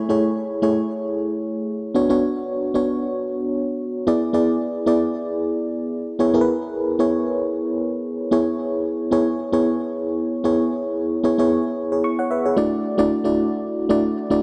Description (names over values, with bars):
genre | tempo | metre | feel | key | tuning
pop | 113 BPM | 4/4 | swing 55% on 16ths | unclear | A4 = 440 Hz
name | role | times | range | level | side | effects
FM electric piano with tremolo | solo | 0.0-14.4 s | A3 to C#6 | -21 LUFS | equal | digital delay
room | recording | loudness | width
light reverb, digital ambience | none | -22 LUFS | mono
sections
0.0-8.3 A section; 8.3-12.6 B section; 12.6-14.4 C section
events
FM electric piano fill 11.8-12.6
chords
0.0 Amaj7; 2.0 Bmadd9; 4.1 E7; 6.2 C#m7; 12.6 Dadd9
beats
0.36 0.89 1.42 | 1.95 2.48 3.01 3.54 | 4.08 4.61 5.14 5.67 | 6.20 6.73 7.26 7.79 | 8.32 8.85 9.38 9.92 | 10.45 10.98 11.51 12.04 | 12.57 13.10 13.63 14.16